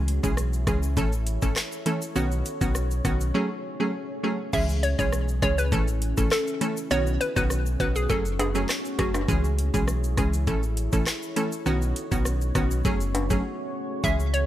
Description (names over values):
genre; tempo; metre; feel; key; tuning
dancehall; 101 BPM; 4/4; straight; C# minor; A4 = 440 Hz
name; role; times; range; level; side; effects
wavetable chord stab; accompaniment; 0.0-14.5 s; D#3 to A4; -28 LUFS; right 1 dB; none
deep dark ambient pad; sustained chords; 0.0-14.5 s; A3 to C#5; -35 LUFS; equal; chorus, built-in reverb, sidechain pumping
sub bass with octave; bass; 0.0-14.5 s; F#1 to C#2; -26 LUFS; equal; none
island pop drum kit; drums; 0.1-14.5 s; crash cymbal, handclaps, hi-hat, kick drum, rim click, shaker; -28 LUFS; equal; none
tube shaker and timbales; percussion; 0.2-14.3 s; none; -36 LUFS; left 3 dB; none
hollow square pluck; melody; 4.5-9.1, 14.0-14.5 s; F#4 to E5; -28 LUFS; equal; chorus, digital delay
room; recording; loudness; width
digital ambience; none; -23 LUFS; side -13 dB against mid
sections
0.0-4.5 A section; 4.5-14.5 B section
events
break 3.3-4.5, 13.4-14.0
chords
0.0 C#m; 1.0 A; 2.2 Badd9; 3.3 F#madd9; 4.5 C#m; 5.7 A; 6.9 Badd9; 8.1 F#madd9; 9.3 C#m; 10.5 A; 11.7 Badd9; 12.8 F#madd9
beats
0.38 0.97 1.56 | 2.16 2.75 3.35 3.94 | 4.53 5.13 5.72 6.32 | 6.91 7.50 8.10 8.69 | 9.29 9.88 10.47 11.07 | 11.66 12.26 12.85 13.44 | 14.04